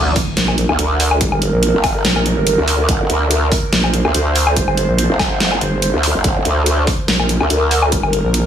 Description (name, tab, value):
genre	heavy wobble dubstep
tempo	143 BPM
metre	4/4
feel	swing 54% on 16ths, half-time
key	G minor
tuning	A4 = 440 Hz
part	growl bass	bass	0.0-7.9 s	G1 to D2	-15 LUFS	equal	chorus, overdrive
part	impact	sound effects	0.0-1.2 s	none	-27 LUFS	equal	none
part	dubstep drum kit	drums	0.2-8.4 s	hi-hat, snare drum, woodblock	-18 LUFS	left 1 dB	none
part	electronic kick drum	drums	0.2-8.0 s	none	-19 LUFS	equal	none
part	airy breathy pad	texture	0.3-8.5 s	Bb4 to C5	-22 LUFS	right 2 dB	chorus, sidechain pumping
part	vowel-sweep wobble bass	bass	0.4-8.4 s	G1 to Bb1	-17 LUFS	equal	chorus, overdrive
room	light reverb, digital ambience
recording	studio reverb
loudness	-13 LUFS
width	side -9 dB against mid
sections	0.0-8.5 A section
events	impact 0.0-1.2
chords	0.0 Gm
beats	0.37 0.79 | 1.21 1.63 2.05 2.47 | 2.89 3.31 3.73 4.14 | 4.57 4.98 5.40 5.82 | 6.24 6.66 7.08 7.50 | 7.92 8.34